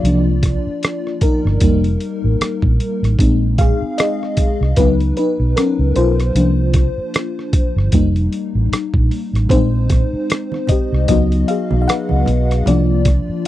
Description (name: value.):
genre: R&B, neo-soul.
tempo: 76 BPM.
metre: 4/4.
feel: swing 57% on 16ths.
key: unclear.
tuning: A4 = 435 Hz.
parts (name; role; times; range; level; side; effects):
FM electric piano with soft pad layer; accompaniment; 0.0-13.5 s; F3 to Gb5; -18 LUFS; left 2 dB; chorus, tremolo.
vintage muted fingered electric bass; bass; 0.0-13.3 s; F1 to Db2; -16 LUFS; equal; none.
boom bap sampler-style drum kit; drums; 0.0-13.5 s; hi-hat, kick drum, rim click; -16 LUFS; equal; none.
congas; percussion; 9.5-13.5 s; none; -26 LUFS; right 7 dB; none.
room: little or no reverb.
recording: dry, close 1970s-style studio recording.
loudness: -14 LUFS.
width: side -14 dB against mid.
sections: 0.0-13.5 A section.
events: FM electric piano solo 0.0-13.5.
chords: 0.0 C9sus4; 1.6 F9sus4; 3.2 Bb9sus4; 4.8 Db9sus4; 6.3 C9sus4; 7.9 F9sus4; 9.5 Bb9sus4; 11.1 Db9sus4; 12.7 C9sus4.